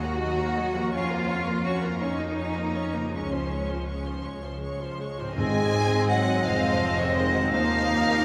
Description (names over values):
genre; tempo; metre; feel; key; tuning
cinematic, emotional film score for orchestra; 55 BPM (dotted quarters); 6/8; rubato; unclear; A4 = 441 Hz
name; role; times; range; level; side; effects
rich studio violin section; melody; 0.0-8.2 s; Db5 to Db6; -36 LUFS; equal; none
rich studio violin section; second line; 0.0-8.2 s; Ab4 to Gb5; -36 LUFS; equal; none
warm studio viola section; accompaniment; 0.0-8.2 s; F3 to Eb4; -33 LUFS; equal; none
concert harp; arpeggios; 0.0-8.2 s; Ab2 to C5; -38 LUFS; equal; none
rich studio cello section; bass; 0.0-8.2 s; Eb2 to Gb4; -34 LUFS; equal; none
rich studio double bass section; bass; 0.0-8.2 s; F1 to F2; -34 LUFS; equal; none
mellow hollow silver concert flute; second line; 5.4-8.2 s; Bb6; -31 LUFS; equal; none
warm clarinet; second line; 5.4-8.2 s; C4 to Eb4; -35 LUFS; equal; none
mellow French horn section; sustained chords; 5.4-8.2 s; Db3 to Ab3; -32 LUFS; equal; none
timpani; percussion; 5.4-6.4 s; Ab2; -36 LUFS; equal; none
room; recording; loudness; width
wet church reverb, RT60 3.7 s; recorded in a church or concert hall; -26 LUFS; mono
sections
0.0-5.4 A section; 5.4-8.2 B section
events
none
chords
0.0 Ebm; 0.9 Bbm/F; 3.1 Dbmaj7; 5.4 Abadd9; 7.5 Eb5